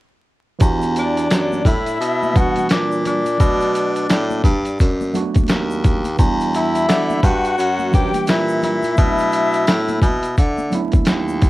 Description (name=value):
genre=hip hop, jazz-hop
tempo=86 BPM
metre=4/4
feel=swing 60% on 16ths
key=E minor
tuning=A4 = 440 Hz
part: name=tine electric piano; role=accompaniment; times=0.6-11.5 s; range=E3 to B4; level=-24 LUFS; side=right 5 dB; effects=overdrive, medium stereo tremolo, cassette tape
part: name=clear baritone saxophone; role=bass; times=0.6-11.5 s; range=D#2 to D3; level=-20 LUFS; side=equal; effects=none
part: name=boom bap sampler-style drum kit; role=drums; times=0.6-11.5 s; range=hi-hat, kick drum, snare drum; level=-16 LUFS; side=equal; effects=overdrive, vintage 12-bit sampler grit, cassette tape
part: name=tube shaker and congas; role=percussion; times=0.6-11.5 s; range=none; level=-30 LUFS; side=left 5 dB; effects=none
part: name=mellow tenor saxophone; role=melody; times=1.0-10.7 s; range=D4 to G4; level=-23 LUFS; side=equal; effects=cassette tape, tape echo
part: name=breathy mellow jazz flute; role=second line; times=1.0-10.7 s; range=D5 to G5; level=-25 LUFS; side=left 6 dB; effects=cassette tape
room=light reverb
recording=home recording on cassette, vinyl crackle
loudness=-15 LUFS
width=side -18 dB against mid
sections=0.6-11.5 A section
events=none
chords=0.6 Em9; 3.4 Bm7; 6.2 Em9; 9.0 Bm7